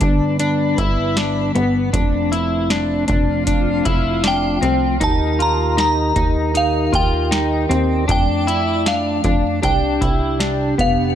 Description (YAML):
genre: dream pop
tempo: 78 BPM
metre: 4/4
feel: straight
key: F lydian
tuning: A4 = 440 Hz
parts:
  - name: mellow tonewheel organ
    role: sustained chords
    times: 0.0-11.2 s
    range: C3 to Bb4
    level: -23 LUFS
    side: right 3 dB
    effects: slow rotary speaker
  - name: electric guitar at the edge of break-up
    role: arpeggios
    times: 0.0-11.2 s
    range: B3 to F4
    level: -20 LUFS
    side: left 3 dB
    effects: analog chorus, ping-pong delay
  - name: plucky analog bass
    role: bass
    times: 0.0-11.2 s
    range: F1 to F2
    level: -23 LUFS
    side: right 1 dB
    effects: none
  - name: booming analog drum machine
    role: drums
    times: 0.0-11.0 s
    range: hi-hat, kick drum, snare drum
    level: -21 LUFS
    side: right 1 dB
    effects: none
  - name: twinkling granular texture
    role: texture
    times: 0.1-11.2 s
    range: F4 to D5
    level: -32 LUFS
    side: equal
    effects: built-in reverb, ping-pong delay
  - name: glassy synth bell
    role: melody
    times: 4.3-11.2 s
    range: F5 to Bb5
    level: -21 LUFS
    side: right 1 dB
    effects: chorus, tremolo, ping-pong delay
room: light reverb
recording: none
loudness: -15 LUFS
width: side -10 dB against mid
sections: 0.0-11.2 A section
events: none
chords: 0.0 G; 1.9 F; 5.0 Eb; 8.1 F; 9.6 Csus2